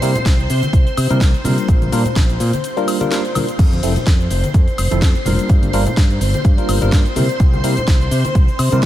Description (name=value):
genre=filtered disco house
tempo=126 BPM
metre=4/4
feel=swing 55% on 16ths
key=unclear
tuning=A4 = 439 Hz
part: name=bright tine electric piano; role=accompaniment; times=0.0-8.9 s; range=F3 to Bb4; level=-22 LUFS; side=equal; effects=medium stereo tremolo, phaser, sidechain pumping
part: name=string machine, full ensemble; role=sustained chords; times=0.0-8.9 s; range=C5 to C6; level=-24 LUFS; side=left 2 dB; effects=ensemble chorus, sidechain pumping
part: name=modern bright fingered electric bass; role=bass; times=0.0-8.9 s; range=F1 to C3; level=-18 LUFS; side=equal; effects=sidechain pumping
part: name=house drum kit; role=drums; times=0.0-8.9 s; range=cabasa, crash cymbal, hi-hat, snare drum, woodblock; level=-25 LUFS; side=left 1 dB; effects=overdrive, sidechain pumping on hats, sidechain pumping on perc, sidechain pumping on cymbals
part: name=tube shaker and congas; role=percussion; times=0.1-8.9 s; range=none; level=-26 LUFS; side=left 1 dB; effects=none
part: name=electronic kick drum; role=drums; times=0.3-8.9 s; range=none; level=-13 LUFS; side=equal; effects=overdrive
room=light reverb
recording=none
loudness=-13 LUFS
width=side -13 dB against mid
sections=0.0-8.9 A section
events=break 2.6-3.6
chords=0.0 C7; 1.7 Bb6; 3.6 Fmaj7; 5.5 Gm7; 7.2 C7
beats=0.26 0.73 1.21 | 1.69 2.16 2.64 3.11 | 3.59 4.07 4.54 5.02 | 5.50 5.97 6.45 6.92 | 7.40 7.88 8.35 8.83